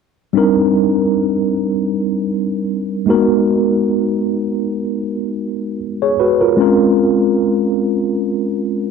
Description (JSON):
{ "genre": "R&B", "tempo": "77 BPM", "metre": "4/4", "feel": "swing 54% on 16ths", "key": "unclear", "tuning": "A4 = 440 Hz", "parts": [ { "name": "mellow tine electric piano", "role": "accompaniment", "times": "0.3-8.9 s", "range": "G3 to Db5", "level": "-14 LUFS", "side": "equal", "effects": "medium stereo tremolo" } ], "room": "moderate lush hall reverb, RT60 2.7 s", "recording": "dark, warm production", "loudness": "-14 LUFS", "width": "side -5 dB against mid", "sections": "0.4-8.9 A section", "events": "none", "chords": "0.4 Cm9; 3.1 Abm9; 6.6 Bbm9", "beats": "| 0.35 1.13 1.91 2.69 | 3.47 4.25 5.03 5.81 | 6.58 7.36 8.14" }